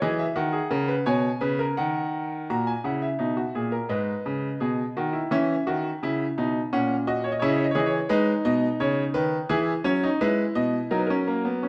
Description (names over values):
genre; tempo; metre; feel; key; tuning
classical, baroque-style 3-part fugue for grand piano; 85 BPM; 4/4; straight; unclear; A4 = 440 Hz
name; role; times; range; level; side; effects
bright grand piano; solo; 0.0-11.7 s; G#2 to A#5; -25 LUFS; equal; none
room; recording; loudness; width
wet recital hall reverb, RT60 1.4 s; dark, warm production; -25 LUFS; mono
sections
0.0-2.5 A section; 2.5-11.7 B section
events
none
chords
0.0 F#7; 1.1 B; 2.5 D#m/A#; 3.9 G#m; 5.3 C#m; 6.7 F#7/A#; 8.1 G#m; 9.5 E; 10.9 F#